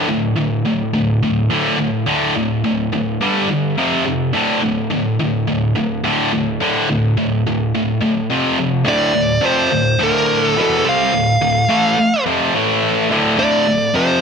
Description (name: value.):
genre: metal.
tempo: 106 BPM.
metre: 4/4.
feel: straight.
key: D minor.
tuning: A4 = 441 Hz.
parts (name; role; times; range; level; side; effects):
high-gain distorted guitar; riff; 0.0-14.2 s; D2 to C4; -15 LUFS; equal; distortion.
high-gain lead guitar; melody; 8.9-14.2 s; A4 to F5; -17 LUFS; right 1 dB; distortion.
room: light reverb, digital ambience.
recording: dark, warm production.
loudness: -14 LUFS.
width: side -6 dB against mid.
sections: 0.0-8.9 A section; 8.9-14.2 B section.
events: none.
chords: 0.0 D5; 3.2 G5; 3.8 F5; 4.3 D5; 8.3 F5; 8.9 Dm; 12.5 A5; 13.1 Dm.